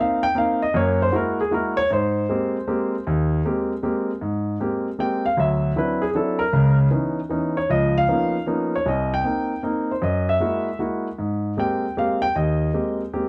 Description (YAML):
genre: jazz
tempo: 155 BPM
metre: 3/4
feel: swing 67% on 8ths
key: Ab major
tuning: A4 = 438 Hz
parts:
  - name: warm grand piano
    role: solo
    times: 0.0-13.3 s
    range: C2 to G5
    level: -22 LUFS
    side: equal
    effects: none
room: moderate studio ambience, RT60 0.5 s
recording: none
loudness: -22 LUFS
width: mono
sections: 0.0-4.2 A section; 4.2-13.3 B section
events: grand piano solo 0.0-4.2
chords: 0.0 Cm7; 0.7 Gb9; 1.9 Abmaj9; 5.4 D9; 6.5 Dbm9; 7.7 Db13; 8.9 Cm7; 10.0 Gb9; 11.2 Abmaj9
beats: 0.35 | 0.73 1.12 1.51 | 1.89 2.28 2.67 | 3.05 3.44 3.83 | 4.21 4.60 4.99 | 5.37 5.76 6.15 | 6.54 6.92 7.31 | 7.70 8.09 8.47 | 8.86 9.25 9.63 | 10.02 10.41 10.80 | 11.18 11.57 11.96 | 12.35 12.73 13.12